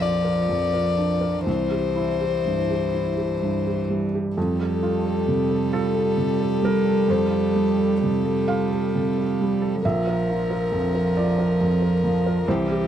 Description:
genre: neoclassical piano and strings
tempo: 40-46 BPM (dotted quarters)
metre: 6/8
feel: rubato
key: F major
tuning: A4 = 443 Hz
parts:
  - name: warm violin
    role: melody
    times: 0.0-12.9 s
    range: G4 to D5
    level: -26 LUFS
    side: left 8 dB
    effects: none
  - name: rich cello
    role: second line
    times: 0.0-12.9 s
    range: E3 to G3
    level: -25 LUFS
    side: right 4 dB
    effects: none
  - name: felt-muted upright piano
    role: accompaniment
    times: 0.0-12.9 s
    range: Bb1 to F5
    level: -24 LUFS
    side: right 2 dB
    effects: none
room: studio ambience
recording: dry, close 1970s-style studio recording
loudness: -20 LUFS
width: side -10 dB against mid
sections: 0.0-4.4 A section; 4.4-12.9 A section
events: none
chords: 0.0 Bb; 1.5 C; 4.4 Fadd9; 9.8 Bb

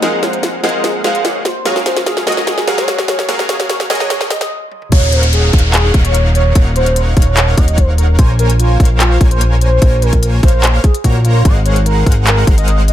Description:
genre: future bass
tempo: 147 BPM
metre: 4/4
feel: half-time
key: unclear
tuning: A4 = 440 Hz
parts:
  - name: warm velvety synth lead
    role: melody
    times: 0.0-12.9 s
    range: F4 to F5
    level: -19 LUFS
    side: right 1 dB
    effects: chorus, sidechain pumping, dub echo
  - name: warm baby grand piano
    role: accompaniment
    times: 0.0-4.9 s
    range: F3 to Ab4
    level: -27 LUFS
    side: right 2 dB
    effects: sidechain pumping, dub echo
  - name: ethereal airy pad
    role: sustained chords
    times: 0.0-4.5 s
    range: Ab3 to Bb3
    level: -37 LUFS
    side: equal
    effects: none
  - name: supersaw stab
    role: riff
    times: 0.0-12.9 s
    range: Gb3 to Bb5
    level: -20 LUFS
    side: equal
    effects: sidechain pumping
  - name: fat analog bass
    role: bass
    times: 0.0-12.9 s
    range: Eb1 to Bb1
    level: -13 LUFS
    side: equal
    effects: sidechain pumping, high-pass filter
  - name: trap drum kit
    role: drums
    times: 0.0-12.9 s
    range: crash cymbal, handclaps, hi-hat, snare drum, toms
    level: -17 LUFS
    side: left 1 dB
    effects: none
  - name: electronic kick drum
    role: drums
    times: 4.9-12.6 s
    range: none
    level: -10 LUFS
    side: equal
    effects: none
  - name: downlifter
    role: sound effects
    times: 4.9-8.2 s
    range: none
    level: -22 LUFS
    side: equal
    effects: none
room: little or no reverb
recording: high-pass filter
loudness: -10 LUFS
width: side -12 dB against mid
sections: 0.0-4.9 A section; 4.9-12.9 B section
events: build-up 0.0-4.9; drum fill 0.0-4.5, 4.7; stop 4.5-4.9; drop 4.9-12.9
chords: 0.0 Ab13; 1.5 Gbmaj9; 4.9 Ebm7; 8.2 Bbm9; 11.5 Ab13

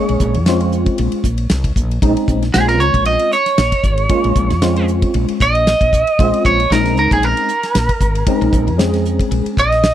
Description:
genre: electric jazz fusion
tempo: 115 BPM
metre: 4/4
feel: swing 55% on 16ths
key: Bb minor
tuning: A4 = 440 Hz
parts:
  - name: lightly driven lead guitar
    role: melody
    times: 0.0-9.9 s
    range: Ab4 to Eb5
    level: -16 LUFS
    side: right 2 dB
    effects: tape echo
  - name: tine electric piano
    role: accompaniment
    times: 0.0-9.6 s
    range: Ab3 to Ab4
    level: -18 LUFS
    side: left 1 dB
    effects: slow stereo tremolo, ensemble chorus
  - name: woody fretless electric bass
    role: bass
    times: 0.1-9.9 s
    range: Ab1 to F2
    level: -18 LUFS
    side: equal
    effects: lush chorus
  - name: damped 70s drum kit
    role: drums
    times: 0.1-9.9 s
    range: hi-hat, kick drum, ride cymbal, snare drum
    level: -18 LUFS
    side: equal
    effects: none
room: small room ambience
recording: dry, close 1970s-style studio recording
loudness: -12 LUFS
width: side -11 dB against mid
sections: 0.0-9.9 A section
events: lead electric guitar solo 0.0-9.9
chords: 0.0 Bbm9

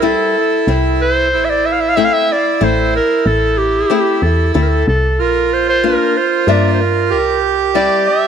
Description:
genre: klezmer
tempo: 93 BPM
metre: 3/4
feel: straight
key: unclear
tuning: A4 = 439 Hz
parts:
  - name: clear clarinet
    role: melody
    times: 0.0-8.3 s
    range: G4 to F5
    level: -15 LUFS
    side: equal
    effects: tape echo
  - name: accordion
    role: second line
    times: 0.0-8.3 s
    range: E4 to G4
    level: -17 LUFS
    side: right 8 dB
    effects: none
  - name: nylon-string guitar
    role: accompaniment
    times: 0.0-8.1 s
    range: G3 to E5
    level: -19 LUFS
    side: left 11 dB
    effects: none
  - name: woody FM bass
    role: bass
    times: 0.0-7.9 s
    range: A1 to G2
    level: -18 LUFS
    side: equal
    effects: none
room: moderate echo chamber reverb, RT60 2.2 s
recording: 1960s-style stereo with parts hard left and right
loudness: -12 LUFS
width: side -8 dB against mid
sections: 0.0-8.3 A section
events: none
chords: 0.0 C; 1.3 Am; 5.2 Bb; 7.1 C

